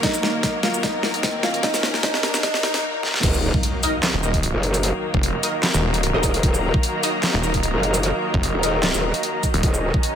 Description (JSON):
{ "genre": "heavy wobble dubstep", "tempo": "150 BPM", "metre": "4/4", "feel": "swing 54% on 16ths, half-time", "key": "Eb minor", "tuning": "A4 = 440 Hz", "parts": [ { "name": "felt-muted upright piano", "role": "melody", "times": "0.0-2.8 s", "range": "Eb4 to F5", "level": "-26 LUFS", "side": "equal", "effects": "vintage 12-bit sampler grit, ping-pong delay" }, { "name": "rich studio string section", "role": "sustained chords", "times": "0.0-10.2 s", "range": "Eb2 to Bb4", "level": "-28 LUFS", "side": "left 2 dB", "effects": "sidechain pumping, low-pass filter" }, { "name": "dubstep drum kit", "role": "drums", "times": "0.0-10.1 s", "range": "crash cymbal, handclaps, hi-hat, shaker, snare drum", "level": "-23 LUFS", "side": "equal", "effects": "overdrive" }, { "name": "electronic kick drum", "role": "drums", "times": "0.0-10.0 s", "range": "none", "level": "-22 LUFS", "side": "equal", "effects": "overdrive" }, { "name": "riser and impact", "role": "sound effects", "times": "0.0-4.8 s", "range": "none", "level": "-29 LUFS", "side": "equal", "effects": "none" }, { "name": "granular cloud pad", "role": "texture", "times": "0.0-10.2 s", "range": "Eb4 to Bb5", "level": "-28 LUFS", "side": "equal", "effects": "built-in reverb, sidechain pumping" }, { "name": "growl bass", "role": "bass", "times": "3.2-9.9 s", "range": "Eb1 to Gb1", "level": "-22 LUFS", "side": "equal", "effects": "chorus, overdrive" }, { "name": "orchestra-hit-like synth stab", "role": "stabs", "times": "3.8-8.7 s", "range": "Eb4 to Eb5", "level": "-28 LUFS", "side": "right 1 dB", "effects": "built-in reverb, phaser, ping-pong delay" }, { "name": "snarling distorted saw bass", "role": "bass", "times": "4.1-9.6 s", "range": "Eb1 to F1", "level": "-22 LUFS", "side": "equal", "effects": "distortion, overdrive" } ], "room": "light reverb", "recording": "high-pass filter", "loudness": "-18 LUFS", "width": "side -8 dB against mid", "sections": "0.0-3.2 A section; 3.2-10.2 B section", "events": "build-up 0.0-3.2; drum fill 0.0-2.8, 3.0; riser 0.0-2.8; break 2.8-3.2; drop 3.2-10.2; impact 3.2-4.8", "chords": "0.0 Ebm" }